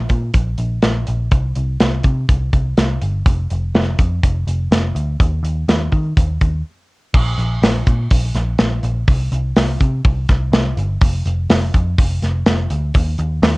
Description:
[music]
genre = jangly indie pop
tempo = 124 BPM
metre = 4/4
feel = straight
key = unclear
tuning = A4 = 440 Hz
[part]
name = vintage muted picked electric bass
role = bass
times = 0.0-13.6 s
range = F1 to Eb3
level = -18 LUFS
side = equal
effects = none
[part]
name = modern studio drum kit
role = drums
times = 0.1-13.5 s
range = crash cymbal, hi-hat, kick drum, snare drum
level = -15 LUFS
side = equal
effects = none
[sound]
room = light reverb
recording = worn, warbling old tape, cassette tape, warbly pitch drift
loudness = -15 LUFS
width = side -24 dB against mid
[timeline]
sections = 0.0-7.1 A section; 7.1-13.6 A section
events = break 6.7-7.1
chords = none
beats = 0.35 0.83 | 1.32 1.81 2.29 2.78 | 3.26 3.75 4.23 4.72 | 5.20 5.69 6.17 6.66 | 7.14 7.62 8.11 8.59 | 9.08 9.56 10.05 10.53 | 11.02 11.50 11.98 12.47 | 12.95 13.44

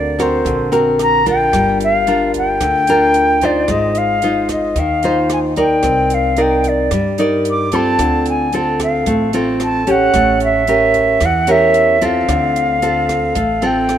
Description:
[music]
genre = bossa nova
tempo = 112 BPM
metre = 4/4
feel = straight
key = unclear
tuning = A4 = 440 Hz
[part]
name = silver concert flute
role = melody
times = 0.0-14.0 s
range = C5 to D6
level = -16 LUFS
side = equal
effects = none
[part]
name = nylon-string guitar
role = accompaniment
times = 0.0-14.0 s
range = D3 to D5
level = -16 LUFS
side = equal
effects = none
[part]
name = upright bass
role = bass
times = 0.0-14.0 s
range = G1 to G2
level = -25 LUFS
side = equal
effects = none
[part]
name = compact cocktail drum kit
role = drums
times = 0.2-14.0 s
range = hi-hat, kick drum, rim click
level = -27 LUFS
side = right 1 dB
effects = none
[sound]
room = light reverb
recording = rough home demo mix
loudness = -12 LUFS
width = side -10 dB against mid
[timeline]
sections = 0.0-14.0 A section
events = none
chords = 0.0 D7alt; 1.5 Gm7; 3.7 Ab6; 5.8 Cm9; 8.0 Dm7; 10.1 A7b9; 12.3 Dm7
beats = 0.46 1.00 | 1.53 2.07 2.61 3.15 | 3.69 4.22 4.76 5.30 | 5.83 6.37 6.91 7.45 | 7.98 8.52 9.06 9.60 | 10.13 10.67 11.21 11.75 | 12.28 12.82 13.36 13.89

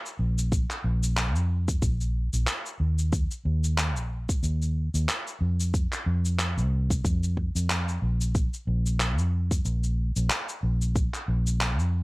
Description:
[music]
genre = sunset chillout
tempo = 92 BPM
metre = 4/4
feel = swing 57% on 16ths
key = unclear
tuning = A4 = 440 Hz
[part]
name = electronic cabasa and handclaps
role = drums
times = 0.1-11.9 s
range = none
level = -30 LUFS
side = equal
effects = none
[part]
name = vintage muted fingered electric bass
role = bass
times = 0.2-12.0 s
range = Bb1 to F2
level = -25 LUFS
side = equal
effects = tube saturation
[part]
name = electronic kick drum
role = drums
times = 0.5-11.1 s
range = none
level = -27 LUFS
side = equal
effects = none
[sound]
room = little or no reverb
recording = dry, gritty hardware recording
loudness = -24 LUFS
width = side -23 dB against mid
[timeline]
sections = 0.0-12.0 A section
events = none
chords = none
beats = | 0.52 1.17 1.83 2.48 | 3.13 3.78 4.43 5.09 | 5.74 6.39 7.04 7.70 | 8.35 9.00 9.65 10.30 | 10.96 11.61

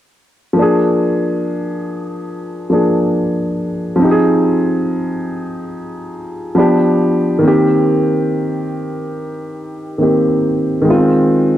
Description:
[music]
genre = R&B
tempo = 70 BPM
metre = 4/4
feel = straight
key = unclear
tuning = A4 = 443 Hz
[part]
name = dark concert grand piano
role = accompaniment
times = 0.5-11.6 s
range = Eb3 to Ab4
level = -13 LUFS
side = equal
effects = cassette tape
[sound]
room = light reverb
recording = home recording on cassette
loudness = -13 LUFS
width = side -12 dB against mid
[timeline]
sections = 0.6-11.6 A section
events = none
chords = 0.6 Bb7; 4.0 Fm7; 6.6 G7; 7.4 Cm7; 10.9 Ab6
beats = | 0.57 1.43 2.29 3.14 | 4.00 4.86 5.71 6.57 | 7.43 8.29 9.14 10.00 | 10.86

